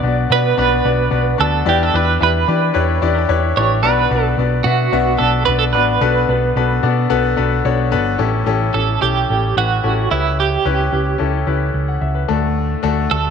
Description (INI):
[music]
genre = piano-driven pop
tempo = 110 BPM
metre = 4/4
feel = straight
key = B minor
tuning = A4 = 440 Hz
[part]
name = twelve-string electric guitar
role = melody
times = 0.0-13.3 s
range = E4 to D5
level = -18 LUFS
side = right 9 dB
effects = tremolo
[part]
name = bright concert grand piano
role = accompaniment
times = 0.0-13.3 s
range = A2 to F#5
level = -18 LUFS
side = left 8 dB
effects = none
[part]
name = hollow-body short-scale picked electric bass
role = bass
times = 0.0-13.3 s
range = G1 to E3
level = -19 LUFS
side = right 2 dB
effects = none
[sound]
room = moderate echo chamber reverb, RT60 2.4 s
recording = 1960s-style stereo with parts hard left and right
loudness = -14 LUFS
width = side -6 dB against mid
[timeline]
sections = 0.0-8.2 A section; 8.2-13.3 B section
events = none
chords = 0.0 Bm; 1.7 Em7; 3.8 Bm; 6.0 Bm7; 8.2 A7; 10.1 C#m7b5; 12.3 D